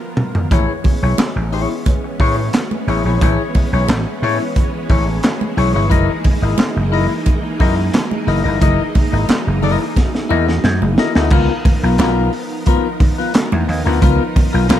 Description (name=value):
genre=funk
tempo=89 BPM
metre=4/4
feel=straight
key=unclear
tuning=A4 = 440 Hz
part: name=string machine, violins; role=sustained chords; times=0.0-14.8 s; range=E3 to Bb4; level=-24 LUFS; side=right 1 dB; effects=ensemble chorus
part: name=crunchy breakbeat drum kit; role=drums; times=0.2-14.8 s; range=crash cymbal, handclaps, hi-hat, kick drum, snare drum, toms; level=-16 LUFS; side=equal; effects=none
part: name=clean electric guitar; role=accompaniment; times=0.5-14.8 s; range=Cb4 to Eb5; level=-20 LUFS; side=left 7 dB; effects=spring reverb
part: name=vintage slap bass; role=bass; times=0.5-14.8 s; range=Gb1 to A2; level=-16 LUFS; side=equal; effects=none
part: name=congas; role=percussion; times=0.5-14.8 s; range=none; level=-24 LUFS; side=right 2 dB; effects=none
room=little or no reverb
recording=dark, warm production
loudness=-13 LUFS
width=side -11 dB against mid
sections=0.5-11.3 A section; 11.3-14.8 B section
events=drum fill 0.0-0.5, 10.0-11.3; band accent 0.0-0.5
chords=0.0 Db13 (rootless); 0.5 Amaj7; 5.9 Gb13; 11.3 Db13 (rootless)